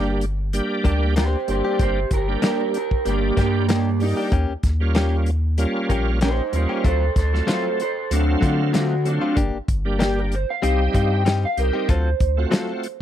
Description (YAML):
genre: straight-eighth soul blues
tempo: 95 BPM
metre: 4/4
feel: swing 54% on 16ths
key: G minor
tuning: A4 = 440 Hz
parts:
  - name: bright tonewheel organ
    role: accompaniment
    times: 0.0-12.9 s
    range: F#3 to E#5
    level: -25 LUFS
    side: right 2 dB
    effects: slow rotary speaker, overdrive, chorus vibrato
  - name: direct-recorded clean electric guitar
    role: stabs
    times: 0.0-12.7 s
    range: F#3 to A4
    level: -26 LUFS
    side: left 5 dB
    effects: none
  - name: warm sub bass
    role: bass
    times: 0.0-12.5 s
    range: G1 to D3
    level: -21 LUFS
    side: equal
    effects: none
  - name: warm soul drum kit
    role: drums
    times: 0.2-13.0 s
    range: hi-hat, kick drum, snare drum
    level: -22 LUFS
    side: equal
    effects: none
  - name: electric guitar through a small old amp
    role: melody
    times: 1.2-13.0 s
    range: Bb3 to G5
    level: -24 LUFS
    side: right 2 dB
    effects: analog chorus
room: small room ambience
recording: dry, close 1970s-style studio recording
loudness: -18 LUFS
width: side -11 dB against mid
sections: 0.0-13.0 A section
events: none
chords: 0.0 Gm; 4.3 Eb7; 6.8 D7#9; 9.4 Gm; 10.6 Cm; 11.9 D7#9